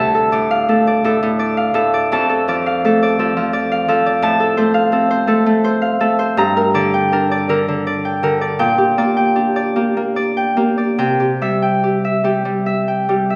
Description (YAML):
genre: classical, solo harp piece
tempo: 47-58 BPM (dotted quarters)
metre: 6/8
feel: rubato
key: unclear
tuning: A4 = 440 Hz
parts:
  - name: Celtic harp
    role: solo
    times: 0.0-13.4 s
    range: D2 to Bb5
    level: -16 LUFS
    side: equal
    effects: none
room: wet recital hall reverb, RT60 1.6 s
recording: heard from further back in the room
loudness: -16 LUFS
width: mono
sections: 0.0-13.4 A section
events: none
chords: 0.0 Dm; 2.1 Dm/F; 4.2 F/A; 6.4 Gm; 8.6 Gm/Bb; 11.0 C